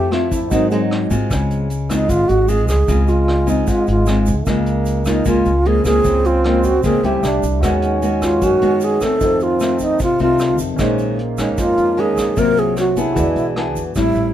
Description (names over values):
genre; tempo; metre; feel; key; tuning
bossa nova; 152 BPM; 4/4; straight; Db major; A4 = 440 Hz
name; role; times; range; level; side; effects
breathy wooden-headed alto flute; melody; 0.0-14.3 s; Ab3 to Bb4; -17 LUFS; right 1 dB; none
nylon-string guitar; accompaniment; 0.0-14.3 s; F2 to Ab4; -19 LUFS; left 2 dB; none
warm grand piano; accompaniment; 0.0-1.3, 7.6-14.0 s; Db4 to D5; -26 LUFS; right 3 dB; none
upright bass; bass; 0.0-14.3 s; Ab1 to Ab2; -21 LUFS; equal; none
vintage brush drum kit; drums; 0.1-14.2 s; hi-hat, kick drum, rim click; -26 LUFS; equal; none
egg shaker; percussion; 0.3-14.3 s; none; -37 LUFS; right 6 dB; none
breathy trombone; second line; 1.3-13.7 s; Gb3 to D4; -25 LUFS; right 5 dB; none
room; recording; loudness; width
little or no reverb; minimal, uncompressed stereo recording; -14 LUFS; side -11 dB against mid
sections
0.0-1.3 A section; 1.3-14.0 B section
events
alto flute solo 0.0-1.3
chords
0.0 Fmaj7; 0.5 Ab7; 1.3 Dbmaj7; 4.5 Dbmaj13; 7.2 C6; 7.6 Cb6/Eb; 9.2 F7; 10.8 Bbm11; 12.4 Ab13/C; 13.2 E7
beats
0.12 0.51 0.91 | 1.30 1.70 2.09 2.49 | 2.88 3.28 3.67 4.07 | 4.46 4.86 5.26 5.65 | 6.05 6.44 6.84 7.23 | 7.63 8.02 8.42 8.81 | 9.21 9.60 10.00 10.39 | 10.79 11.19 11.58 11.97 | 12.37 12.77 13.16 13.56 | 13.95